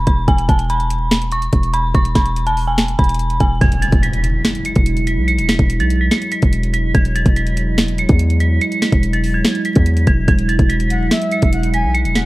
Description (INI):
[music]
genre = hip hop, trap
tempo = 144 BPM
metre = 4/4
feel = half-time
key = E major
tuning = A4 = 435 Hz
[part]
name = dark detuned synth bell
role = melody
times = 0.0-12.3 s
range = G#5 to C#7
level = -21 LUFS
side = right 1 dB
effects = chorus, low-pass filter, tape echo
[part]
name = hard-hitting 808-style bass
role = bass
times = 0.0-12.2 s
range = E1 to E2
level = -17 LUFS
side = equal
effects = none
[part]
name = trap drum kit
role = drums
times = 0.1-12.3 s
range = hi-hat, kick drum, snare drum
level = -16 LUFS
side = equal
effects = none
[part]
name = dark analog pad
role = sustained chords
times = 3.6-12.3 s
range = F#3 to E4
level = -22 LUFS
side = right 1 dB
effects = chorus
[part]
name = impact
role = sound effects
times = 3.6-5.3 s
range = none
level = -25 LUFS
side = equal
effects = none
[part]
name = breathy reedy jazz flute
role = second line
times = 10.9-12.3 s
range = E5 to G#5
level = -22 LUFS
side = equal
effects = tape echo
[sound]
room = little or no reverb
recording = dark, warm production, vinyl crackle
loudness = -13 LUFS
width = side -19 dB against mid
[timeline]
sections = 0.0-3.6 A section; 3.6-12.3 B section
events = impact 3.6-5.3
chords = 0.3 E5; 3.6 Eadd9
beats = | 0.28 0.70 1.11 1.53 | 1.95 2.36 2.78 3.20 | 3.61 4.03 4.45 4.86 | 5.28 5.70 6.11 6.53 | 6.95 7.36 7.78 8.20 | 8.61 9.03 9.45 9.86 | 10.28 10.70 11.11 11.53 | 11.95